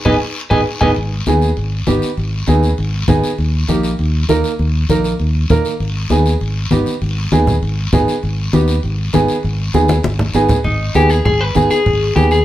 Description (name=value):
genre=latin, cumbia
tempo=198 BPM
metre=4/4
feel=straight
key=G# harmonic minor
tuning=A4 = 439 Hz
part: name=clean electric guitar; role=second line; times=0.1-0.9, 10.6-12.4 s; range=D#4 to G#5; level=-17 LUFS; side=left 2 dB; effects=none
part: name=warm upright piano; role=accompaniment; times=0.1-12.4 s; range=A#3 to A#4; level=-16 LUFS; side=right 2 dB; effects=none
part: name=fingered electric bass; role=bass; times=0.1-12.4 s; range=G#1 to D#2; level=-17 LUFS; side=equal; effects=none
part: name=congas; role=percussion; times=0.1-12.3 s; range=none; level=-18 LUFS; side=left 1 dB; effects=none
part: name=guiro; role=percussion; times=0.1-12.4 s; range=none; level=-28 LUFS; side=left 4 dB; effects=none
room=moderate studio reverb, RT60 0.7 s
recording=heard from further back in the room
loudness=-13 LUFS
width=side -14 dB against mid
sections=1.0-10.6 A section; 10.6-12.4 A section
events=band accent 0.0-1.0; drum fill 0.4-1.0, 9.7-10.6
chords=0.0 G#m; 3.4 D#5; 5.8 G#m